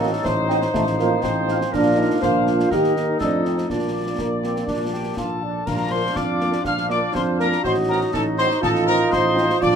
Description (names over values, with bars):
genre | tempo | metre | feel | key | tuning
military-style march for wind band | 122 BPM | 2/4 | straight | Bb major | A4 = 441 Hz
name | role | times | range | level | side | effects
clear trumpet section | melody | 0.0-9.8 s | G4 to F5 | -26 LUFS | equal | none
warm euphonium | second line | 0.0-9.8 s | A3 to G4 | -23 LUFS | right 3 dB | none
warm woodwind section | second line | 0.0-9.8 s | F4 to F5 | -28 LUFS | left 2 dB | none
mellow French horn section | accompaniment | 0.0-9.4 s | A3 to Bb4 | -25 LUFS | equal | none
bright trombone section | sustained chords | 0.0-9.8 s | F3 to F4 | -27 LUFS | equal | none
dark tuba | bass | 0.0-9.8 s | A1 to F2 | -27 LUFS | right 2 dB | none
concert snare drum, concert bass drum and clash cymbals | drums | 0.3-9.8 s | none | -31 LUFS | equal | none
bright piccolo | second line | 4.9-9.7 s | G5 to F6 | -26 LUFS | left 6 dB | none
room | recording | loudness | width
moderate booth ambience, RT60 0.2 s | minimal, uncompressed stereo recording | -18 LUFS | side -7 dB against mid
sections
0.0-5.7 A section; 5.7-9.8 A section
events
none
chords
0.0 Adim7; 0.7 F7/A; 1.7 Bb; 2.7 Eb; 3.2 F7; 3.7 Bb; 7.6 Adim7; 8.6 F7/A